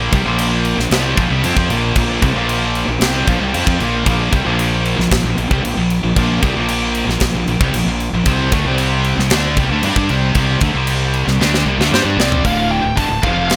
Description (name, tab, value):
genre	hard rock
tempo	114 BPM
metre	4/4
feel	straight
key	unclear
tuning	A4 = 441 Hz
part	high-gain distorted guitar	riff	0.0-13.6 s	D2 to D4	-22 LUFS	equal	distortion
part	sludgy distorted guitar	riff	0.0-13.6 s	D2 to D4	-23 LUFS	equal	overdrive
part	fuzz fingered electric bass	bass	0.0-13.6 s	D1 to G2	-22 LUFS	equal	overdrive
part	tight metal drum kit	drums	0.1-13.6 s	crash cymbal, hi-hat, kick drum, snare drum, toms	-21 LUFS	equal	none
part	bluesy overdriven lead guitar	melody	11.9-13.6 s	C5 to A5	-21 LUFS	equal	distortion, plate reverb
room	light reverb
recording	none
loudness	-16 LUFS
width	mono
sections	0.0-12.4 A section; 12.4-13.6 B section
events	drum fill 11.4-12.4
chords	0.0 Bb5; 8.3 C5; 12.4 D5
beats	0.39 0.91 1.44 | 1.96 2.48 3.01 3.54 | 4.06 4.58 5.11 5.63 | 6.16 6.68 7.21 7.73 | 8.26 8.78 9.31 9.83 | 10.35 10.88 11.40 11.93 | 12.45 12.97 13.50